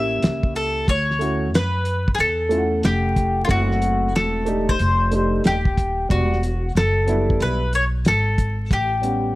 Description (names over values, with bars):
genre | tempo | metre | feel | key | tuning
hip hop, jazz-hop | 92 BPM | 4/4 | swing 64% on 16ths | unclear | A4 = 439 Hz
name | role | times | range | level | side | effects
bowl-back mandolin | melody | 0.0-9.3 s | E#4 to E5 | -22 LUFS | left 1 dB | none
warm baby grand piano | accompaniment | 0.0-9.4 s | F#3 to F#5 | -24 LUFS | right 1 dB | none
upright bass | bass | 0.0-9.4 s | Eb1 to F#2 | -22 LUFS | equal | none
cloth-damped thuddy drum kit | drums | 0.2-9.2 s | hi-hat, kick drum, snare drum | -21 LUFS | equal | none
room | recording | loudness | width
studio ambience | vinyl crackle | -18 LUFS | side -18 dB against mid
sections
0.0-9.4 A section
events
none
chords
0.0 A7b9; 0.9 Dmaj9; 3.5 F#m7b5; 4.8 F13; 6.1 Em9; 8.7 A13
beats
0.23 | 0.88 1.53 2.19 2.84 | 3.49 4.14 4.79 5.45 | 6.10 6.75 7.40 8.05 | 8.71